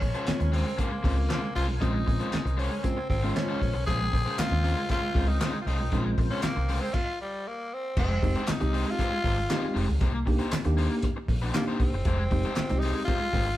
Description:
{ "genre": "funk", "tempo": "117 BPM", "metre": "4/4", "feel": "straight", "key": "F minor", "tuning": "A4 = 440 Hz", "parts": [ { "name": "growling tenor saxophone", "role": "melody", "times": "0.0-13.6 s", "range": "G3 to Ab4", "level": "-32 LUFS", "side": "left 1 dB", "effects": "none" }, { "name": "crunchy overdriven guitar", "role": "accompaniment", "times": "0.0-13.5 s", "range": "Ab3 to C5", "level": "-34 LUFS", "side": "left 1 dB", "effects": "none" }, { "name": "mellow tonewheel organ", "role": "sustained chords", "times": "0.0-6.9 s", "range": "Db3 to Ab5", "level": "-40 LUFS", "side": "equal", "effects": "slow rotary speaker, overdrive, chorus vibrato" }, { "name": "vintage muted fingered electric bass", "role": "bass", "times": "0.0-13.5 s", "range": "F1 to Eb2", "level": "-28 LUFS", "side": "equal", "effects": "none" }, { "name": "cloth-damped thuddy drum kit", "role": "drums", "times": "0.0-13.5 s", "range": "crash cymbal, handclaps, hi-hat, kick drum, snare drum", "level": "-30 LUFS", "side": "equal", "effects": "none" }, { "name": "tine electric piano", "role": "stabs", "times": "0.3-13.1 s", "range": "Ab3 to C5", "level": "-33 LUFS", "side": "right 1 dB", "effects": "none" }, { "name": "group handclap", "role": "percussion", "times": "4.4-12.7 s", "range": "none", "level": "-42 LUFS", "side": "left 2 dB", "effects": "none" } ], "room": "moderate stone room reverb, RT60 1.3 s", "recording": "band playing live in one room", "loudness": "-25 LUFS", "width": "side -14 dB against mid", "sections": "0.0-8.0 A section; 8.0-13.6 B section", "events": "stop 6.9-8.0", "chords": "0.0 Bbm9; 8.0 Fm9; 10.0 Cm7; 12.1 Fm9" }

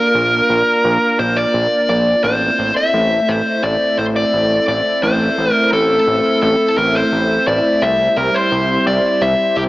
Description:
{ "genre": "synthwave", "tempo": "86 BPM", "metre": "4/4", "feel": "straight", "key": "A phrygian", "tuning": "A4 = 440 Hz", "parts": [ { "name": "dark smooth lead guitar", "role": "melody", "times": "0.0-9.6 s", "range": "G4 to E5", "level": "-14 LUFS", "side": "equal", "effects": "overdrive, digital delay" }, { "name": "lush unison pad", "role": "sustained chords", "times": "0.0-9.7 s", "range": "G3 to F4", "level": "-20 LUFS", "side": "equal", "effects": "chorus" }, { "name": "fat analog bass", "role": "bass", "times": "0.1-9.7 s", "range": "A1 to C2", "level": "-20 LUFS", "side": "equal", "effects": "tube saturation" } ], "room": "moderate lush hall reverb, RT60 2.3 s", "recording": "small speaker sound", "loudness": "-13 LUFS", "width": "side -18 dB against mid", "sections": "0.0-9.7 A section", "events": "none", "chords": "0.0 Bb; 2.2 Am; 7.8 C" }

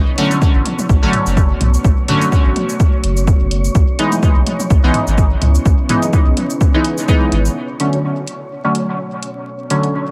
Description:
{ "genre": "dub techno", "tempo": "126 BPM", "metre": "4/4", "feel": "swing 55% on 16ths", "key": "unclear", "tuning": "A4 = 445 Hz", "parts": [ { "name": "deep dark ambient pad", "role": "sustained chords", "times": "0.0-10.1 s", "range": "A3 to A4", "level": "-28 LUFS", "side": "equal", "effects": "chorus, built-in reverb, sidechain pumping" }, { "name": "warm sub bass", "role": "bass", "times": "0.0-7.5 s", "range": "F#1 to C#2", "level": "-18 LUFS", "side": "equal", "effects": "sidechain pumping" }, { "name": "wind-like tuned noise texture", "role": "texture", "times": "0.0-10.1 s", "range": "C#4 to C#5", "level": "-32 LUFS", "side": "equal", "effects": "built-in reverb, sidechain pumping" }, { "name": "resonant sweep polysynth", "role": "stabs", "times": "0.2-9.9 s", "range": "D3 to D#4", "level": "-20 LUFS", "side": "equal", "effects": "chorus, phaser, cassette tape, dub echo" }, { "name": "electronic hi-hat and cabasa", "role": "drums", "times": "0.2-9.9 s", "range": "none", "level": "-30 LUFS", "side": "equal", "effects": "overdrive" }, { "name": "electronic toms", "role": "percussion", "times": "0.3-6.5 s", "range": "none", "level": "-26 LUFS", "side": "equal", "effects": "sidechain pumping on toms, dub echo" }, { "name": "electronic kick drum", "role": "drums", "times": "0.4-7.2 s", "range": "none", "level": "-15 LUFS", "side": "equal", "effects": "overdrive" } ], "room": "light reverb, digital ambience", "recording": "vinyl crackle", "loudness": "-15 LUFS", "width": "mono", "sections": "0.0-7.6 A section; 7.6-10.1 B section", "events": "none", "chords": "0.0 B7(no3); 3.8 C#m7; 7.6 Bm7" }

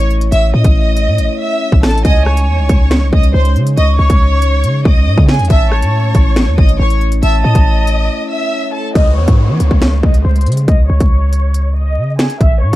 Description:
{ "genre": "hip hop, drill", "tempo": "139 BPM", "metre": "4/4", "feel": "half-time", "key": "C# minor", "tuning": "A4 = 440 Hz", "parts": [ { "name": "rich studio violin section", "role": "melody", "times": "0.0-12.8 s", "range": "G#4 to E6", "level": "-19 LUFS", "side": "equal", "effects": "low-pass filter" }, { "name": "glass harmonica", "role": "sustained chords", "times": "0.0-8.9 s", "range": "G#3 to C#5", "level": "-23 LUFS", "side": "equal", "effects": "none" }, { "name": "hard-hitting 808-style bass", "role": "bass", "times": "0.0-12.8 s", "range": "G#1 to E3", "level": "-12 LUFS", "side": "equal", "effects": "none" }, { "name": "drill drum kit", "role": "drums", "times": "0.0-12.8 s", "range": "finger snaps, hi-hat, kick drum, rim click, snare drum", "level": "-12 LUFS", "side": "equal", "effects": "none" }, { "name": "hollow concert flute", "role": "second line", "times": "2.0-8.1 s", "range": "G#5 to C#6", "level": "-23 LUFS", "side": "right 2 dB", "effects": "ping-pong delay" }, { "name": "downlifter", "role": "sound effects", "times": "9.0-12.4 s", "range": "none", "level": "-26 LUFS", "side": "right 1 dB", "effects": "none" } ], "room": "small room reverb", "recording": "dark, warm production, vinyl crackle", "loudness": "-10 LUFS", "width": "side -16 dB against mid", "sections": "0.0-9.0 A section; 9.0-12.8 B section", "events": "break 8.1-9.0", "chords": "0.0 A; 2.0 C#sus2; 5.5 A; 9.0 C#sus2" }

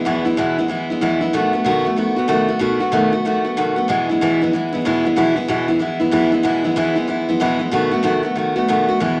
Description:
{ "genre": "rock", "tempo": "188 BPM", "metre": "4/4", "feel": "swing 63% on 8ths", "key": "E major", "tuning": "A4 = 439 Hz", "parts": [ { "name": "picked steel-string acoustic guitar", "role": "solo", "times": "0.0-9.2 s", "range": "E2 to F#4", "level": "-18 LUFS", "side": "equal", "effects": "none" } ], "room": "moderate large studio reverb, RT60 1.2 s", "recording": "vinyl crackle", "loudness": "-18 LUFS", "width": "mono", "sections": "0.0-9.2 A section", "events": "none", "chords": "0.0 E; 1.3 B7; 3.9 E; 7.7 B7" }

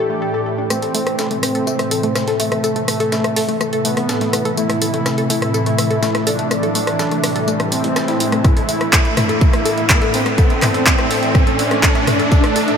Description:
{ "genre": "melodic techno", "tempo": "124 BPM", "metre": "4/4", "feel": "straight", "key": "A minor", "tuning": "A4 = 439 Hz", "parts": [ { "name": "soft supersaw", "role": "melody", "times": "0.0-12.8 s", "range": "A3 to G4", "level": "-22 LUFS", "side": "equal", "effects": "analog delay" }, { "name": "lush unison pad", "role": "sustained chords", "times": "0.0-12.8 s", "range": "A2 to E5", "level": "-23 LUFS", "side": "right 1 dB", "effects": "chorus, phaser, sidechain pumping" }, { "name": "analog pluck", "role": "arpeggios", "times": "0.0-12.7 s", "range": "A3 to A5", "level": "-22 LUFS", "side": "left 2 dB", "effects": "chorus, sidechain pumping, ping-pong delay" }, { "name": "swarming drone", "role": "drone", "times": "0.0-12.8 s", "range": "A2 to E3", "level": "-30 LUFS", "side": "left 1 dB", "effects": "built-in reverb, sidechain pumping" }, { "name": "breakbeat sampler-style drum kit", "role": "drums", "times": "0.7-12.7 s", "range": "hi-hat, snare drum, tambourine", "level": "-30 LUFS", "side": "left 2 dB", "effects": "sidechain pumping on perc, high-pass filter on perc, sidechain pumping on hats, high-pass filter on hats, high-pass filter on snare" }, { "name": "punchy analog drum machine", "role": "drums", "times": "0.7-12.8 s", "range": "handclaps, hi-hat, rim click, toms", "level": "-20 LUFS", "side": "equal", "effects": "overdrive" }, { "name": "riser", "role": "sound effects", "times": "4.8-12.8 s", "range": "none", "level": "-24 LUFS", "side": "right 1 dB", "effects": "none" }, { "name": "electronic kick drum", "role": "drums", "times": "8.4-12.4 s", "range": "none", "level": "-14 LUFS", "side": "equal", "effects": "none" } ], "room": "moderate huge ambient reverb, RT60 7.9 s", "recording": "dreamy mix soaked in reverb", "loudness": "-14 LUFS", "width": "side -7 dB against mid", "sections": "0.7-12.8 A section", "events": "build-up 0.7-12.8; filter sweep on analog synth pad 0.7-12.8; riser 4.8-12.8", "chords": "0.0 Dsus2/A; 0.7 Am; 8.4 Dsus2/A" }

